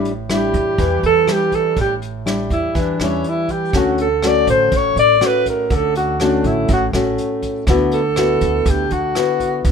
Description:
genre	bossa nova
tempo	122 BPM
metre	4/4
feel	straight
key	D major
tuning	A4 = 442 Hz
part	nylon-string guitar	accompaniment	0.0-9.7 s	A2 to F#4	-19 LUFS	left 3 dB	none
part	upright bass	bass	0.0-9.7 s	A1 to E2	-23 LUFS	right 2 dB	none
part	vintage brush drum kit	drums	0.1-9.7 s	hi-hat, kick drum, rim click	-25 LUFS	equal	none
part	breathy alto saxophone	melody	0.3-9.7 s	C#4 to D5	-17 LUFS	right 1 dB	none
room	little or no reverb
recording	minimal, uncompressed stereo recording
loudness	-14 LUFS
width	side -6 dB against mid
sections	0.0-9.7 A section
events	alto saxophone solo 0.0-9.7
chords	0.0 A7sus4; 3.7 Dmaj7; 7.7 D69

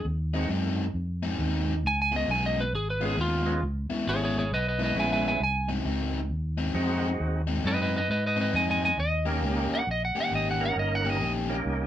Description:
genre	electric blues shuffle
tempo	134 BPM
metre	4/4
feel	swing 63% on 8ths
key	unclear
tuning	A4 = 442 Hz
part	lightly driven lead guitar	melody	0.0-11.3 s	F4 to Ab5	-27 LUFS	right 1 dB	none
part	fingered electric bass	bass	0.0-11.9 s	G1 to Ab2	-30 LUFS	equal	none
part	percussive tonewheel organ	accompaniment	0.3-11.9 s	Ab3 to Bb4	-32 LUFS	right 3 dB	slow rotary speaker, overdrive
part	overdriven electric guitar	riff	0.3-11.6 s	Ab2 to G4	-30 LUFS	left 3 dB	none
room	moderate small room reverb, RT60 0.5 s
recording	band playing live in one room, nothing above 10.6 kHz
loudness	-25 LUFS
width	side -11 dB against mid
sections	0.0-11.9 A section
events	none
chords	0.0 Ab7; 1.8 Db7; 3.6 Dbm7; 5.4 Ab7; 9.0 Eb7

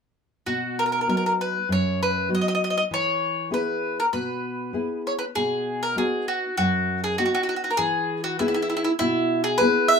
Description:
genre	italian folk, Italian serenade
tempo	99 BPM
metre	4/4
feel	straight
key	B major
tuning	A4 = 440 Hz
part	bowl-back mandolin	melody	0.5-10.0 s	E4 to E5	-23 LUFS	equal	none
part	nylon-string guitar	accompaniment	0.5-10.0 s	F#2 to G#4	-26 LUFS	left 1 dB	none
room	wet small room reverb, RT60 0.5 s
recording	minimal, uncompressed stereo recording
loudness	-22 LUFS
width	side -6 dB against mid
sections	0.5-5.3 A section; 5.3-10.0 B section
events	none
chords	0.5 B; 2.9 E; 5.3 B; 7.8 E

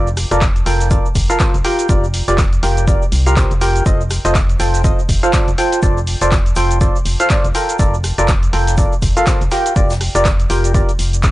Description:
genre	piano house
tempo	122 BPM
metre	4/4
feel	swing 58% on 16ths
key	unclear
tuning	A4 = 440 Hz
part	percussive organ stab	riff	0.0-10.9 s	F4 to G5	-17 LUFS	equal	lush chorus, cassette tape, sidechain pumping, analog delay
part	organ-like FM bass	bass	0.0-11.3 s	F1 to C2	-17 LUFS	equal	sidechain pumping
part	punchy analog drum machine	drums	0.1-11.3 s	cabasa, handclaps, hi-hat, rim click	-23 LUFS	equal	none
part	compact cocktail drum kit	drums	0.2-11.3 s	hi-hat, shaker, snare drum	-32 LUFS	left 2 dB	sidechain pumping on hats, high-pass filter on hats, high-pass filter on snare, sidechain pumping on perc, high-pass filter on perc, high-pass filter on room
part	electronic kick drum	drums	0.4-11.3 s	none	-16 LUFS	equal	none
room	small room ambience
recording	dry, gritty hardware recording, nothing above 10.4 kHz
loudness	-12 LUFS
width	side -17 dB against mid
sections	0.0-11.3 A section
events	none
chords	0.0 Bbmaj7/F; 1.6 Gm7/F; 3.9 F7; 5.8 Dm7/F; 7.5 Bbmaj7/F; 9.5 Gm7/F

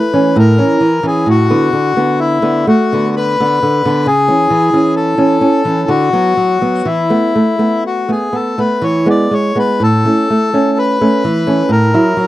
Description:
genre	romantic duo for bandoneon and classical guitar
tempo	63 BPM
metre	3/4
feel	uneven beats, rubato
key	A major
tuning	A4 = 440 Hz
part	bandoneon	melody	0.0-12.3 s	E4 to D5	-14 LUFS	left 3 dB	none
part	nylon-string guitar	accompaniment	0.0-12.3 s	A2 to E4	-12 LUFS	right 1 dB	none
room	little or no reverb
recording	dry, close 1970s-style studio recording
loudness	-10 LUFS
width	side -15 dB against mid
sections	0.0-12.3 A section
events	none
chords	0.0 A; 1.3 Bm/A; 4.1 A/C#; 5.9 Bm/D; 6.9 Esus4; 8.8 E; 9.8 A; 11.7 F#7/A

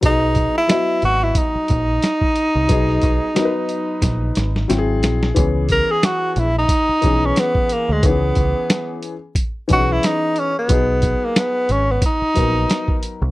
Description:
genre	hip hop, jazz-hop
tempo	90 BPM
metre	4/4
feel	swing 57% on 16ths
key	C# dorian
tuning	A4 = 444 Hz
part	dark upright piano	accompaniment	0.0-13.2 s	D#3 to D#5	-23 LUFS	left 4 dB	none
part	deep dub picked electric bass	bass	0.0-13.3 s	G#1 to D2	-20 LUFS	equal	none
part	boom bap sampler-style drum kit	drums	0.0-13.2 s	hi-hat, kick drum, snare drum	-19 LUFS	equal	none
part	breathy tenor saxophone	melody	0.1-13.0 s	G#3 to A#4	-18 LUFS	right 1 dB	slapback echo
room	little or no reverb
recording	dry, close 1970s-style studio recording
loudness	-15 LUFS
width	side -18 dB against mid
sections	0.0-5.4 A section; 5.4-13.3 B section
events	drum fill 4.0-5.4; tenor saxophone solo 5.4-13.3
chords	0.0 B6; 4.7 G#7b13; 5.4 C#m7; 10.7 B6

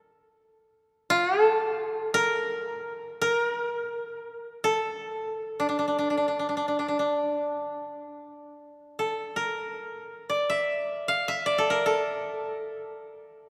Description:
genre	japanese traditional, Japanese chamber music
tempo	free time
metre	none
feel	none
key	unclear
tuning	A4 = 440 Hz
part	koto	solo	0.0-13.5 s	D4 to F5	-28 LUFS	equal	none
room	wet church reverb, RT60 3.4 s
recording	recorded in a church or concert hall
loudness	-28 LUFS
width	mono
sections	0.0-7.8 A section; 7.8-13.5 A section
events	none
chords	none

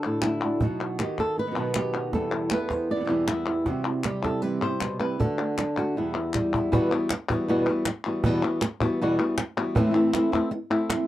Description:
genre	flamenco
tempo	158 BPM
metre	4/4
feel	straight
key	E minor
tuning	A4 = 440 Hz
part	flamenco guitar	melody	0.0-11.1 s	E2 to D5	-25 LUFS	left 1 dB	none
part	palmas hand claps	percussion	0.0-11.1 s	none	-32 LUFS	left 6 dB	none
part	flamenco guitar	stabs	0.2-6.7, 9.8-11.1 s	E2 to F#4	-30 LUFS	right 3 dB	none
part	cajon	percussion	0.2-11.1 s	none	-28 LUFS	right 2 dB	none
room	light reverb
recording	dry, close 1970s-style studio recording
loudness	-23 LUFS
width	side -14 dB against mid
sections	0.0-6.7 A section; 6.7-11.1 B section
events	drum fill 5.8-6.7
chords	0.0 D; 0.6 B; 2.1 Em; 3.7 C; 5.2 D; 6.0 Em; 6.7 Emadd9; 9.8 Am

